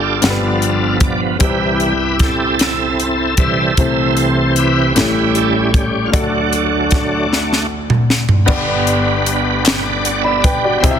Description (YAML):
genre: slow gospel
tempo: 51 BPM (dotted quarters)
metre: 6/8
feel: straight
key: G major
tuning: A4 = 442 Hz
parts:
  - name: warm grand piano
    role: accompaniment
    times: 0.0-11.0 s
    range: G1 to B5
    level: -18 LUFS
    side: left 2 dB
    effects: none
  - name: bright tonewheel organ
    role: sustained chords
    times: 0.0-11.0 s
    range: G2 to F#5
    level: -16 LUFS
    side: right 2 dB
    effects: slow rotary speaker, overdrive, chorus vibrato
  - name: crisp fusion drum kit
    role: drums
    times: 0.2-11.0 s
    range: crash cymbal, hi-hat, kick drum, snare drum, toms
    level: -16 LUFS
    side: equal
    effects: none
  - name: group handclap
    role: percussion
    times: 9.7-10.0 s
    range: none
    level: -20 LUFS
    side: left 3 dB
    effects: none
room: light reverb, small room ambience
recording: dense, heavily limited modern master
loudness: -13 LUFS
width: side -8 dB against mid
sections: 0.0-8.5 A section; 8.5-11.0 B section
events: tonewheel organ solo 0.0-8.5; drum fill 7.3-8.5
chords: 0.0 G7; 1.4 C; 5.0 A7; 6.1 D; 8.5 G